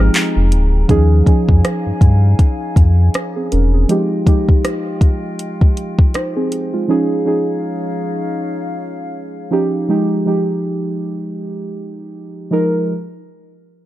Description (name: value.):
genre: contemporary R&B.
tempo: 80 BPM.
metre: 4/4.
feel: swing 58% on 16ths.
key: F minor.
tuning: A4 = 441 Hz.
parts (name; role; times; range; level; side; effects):
warm concert grand piano; melody; 0.0-0.5 s; F6; -34 LUFS; equal; digital delay.
muted felt-like synth keys; accompaniment; 0.0-12.9 s; F3 to C5; -18 LUFS; right 1 dB; chorus.
mellow large flute ensemble; sustained chords; 0.0-9.9 s; Eb4 to Bb5; -29 LUFS; left 4 dB; none.
sub bass with octave; bass; 0.0-3.9 s; D1 to G2; -12 LUFS; equal; none.
smooth R&B drum kit; drums; 0.1-6.7 s; handclaps, hi-hat, kick drum, rim click; -13 LUFS; equal; none.
room: little or no reverb.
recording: dark, warm production.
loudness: -13 LUFS.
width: side -14 dB against mid.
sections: 0.9-12.9 A section.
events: break 0.0-0.9.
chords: 0.0 Fm9; 0.9 Eb9sus4; 3.9 Fm9; 6.9 Eb9sus4; 9.9 Fm9.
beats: 0.14 | 0.89 1.64 2.39 3.14 | 3.89 4.64 5.39 6.14 | 6.89 7.64 8.39 9.14 | 9.89 10.64 11.39 12.14.